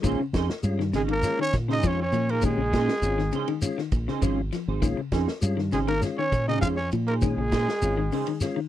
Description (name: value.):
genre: afrobeat.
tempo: 100 BPM.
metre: 4/4.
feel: straight.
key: Bb dorian.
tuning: A4 = 435 Hz.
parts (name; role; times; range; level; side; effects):
percussive tonewheel organ; accompaniment; 0.0-8.6 s; Ab3 to Ab4; -31 LUFS; left 5 dB; slow rotary speaker.
clean electric guitar; arpeggios; 0.0-8.7 s; Db3 to F3; -31 LUFS; left 9 dB; none.
fingered electric bass; bass; 0.0-8.1 s; Ab1 to Bb2; -27 LUFS; equal; none.
vintage drum kit; drums; 0.0-8.6 s; hi-hat, kick drum, ride cymbal, snare drum; -30 LUFS; equal; none.
shekere; percussion; 0.0-8.6 s; none; -29 LUFS; left 1 dB; none.
semi-hollow electric guitar; stabs; 0.1-8.5 s; Db4 to C5; -30 LUFS; right 8 dB; analog chorus.
growling trumpet; melody; 1.0-8.4 s; Ab4 to F5; -28 LUFS; right 1 dB; none.
bright trumpet; second line; 1.0-8.4 s; Ab3 to F4; -35 LUFS; right 6 dB; none.
room: little or no reverb.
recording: dry, close 1970s-style studio recording.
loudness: -23 LUFS.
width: side -12 dB against mid.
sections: 0.0-8.7 A section.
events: none.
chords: 0.0 Bbm11.